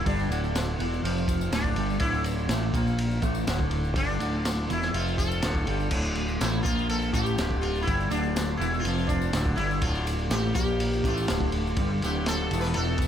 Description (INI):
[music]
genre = psychedelic rock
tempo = 123 BPM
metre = 4/4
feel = straight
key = D minor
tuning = A4 = 442 Hz
[part]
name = sitar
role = melody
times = 0.0-13.1 s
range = D4 to B4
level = -32 LUFS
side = left 1 dB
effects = analog delay
[part]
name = mellow tonewheel organ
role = sustained chords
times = 0.0-13.1 s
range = F4 to F6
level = -39 LUFS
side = right 4 dB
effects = slow rotary speaker
[part]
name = clean electric guitar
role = riff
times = 0.0-13.1 s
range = D2 to Bb3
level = -29 LUFS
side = equal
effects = harmonic tremolo, double-tracked left and right
[part]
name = growling picked electric bass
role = bass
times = 0.0-13.1 s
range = D1 to Bb1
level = -30 LUFS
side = equal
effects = overdrive
[part]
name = crunchy breakbeat drum kit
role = drums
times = 0.1-13.1 s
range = crash cymbal, kick drum, ride cymbal, snare drum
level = -30 LUFS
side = equal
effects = none
[part]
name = tambourine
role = percussion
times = 0.1-13.1 s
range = none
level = -45 LUFS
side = left 14 dB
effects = analog delay
[sound]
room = small room ambience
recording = echo-heavy mix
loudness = -24 LUFS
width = side -9 dB against mid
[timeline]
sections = 0.0-13.1 A section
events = sitar solo 0.0-13.1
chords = 0.0 Dm7; 1.0 F5; 1.5 Dm7; 2.8 Bb5; 3.2 Dm7; 5.0 F5; 5.4 Dm7; 6.7 Bb5; 7.1 Dm7; 8.9 F5; 9.3 Dm7; 10.6 Bb5; 11.0 Dm7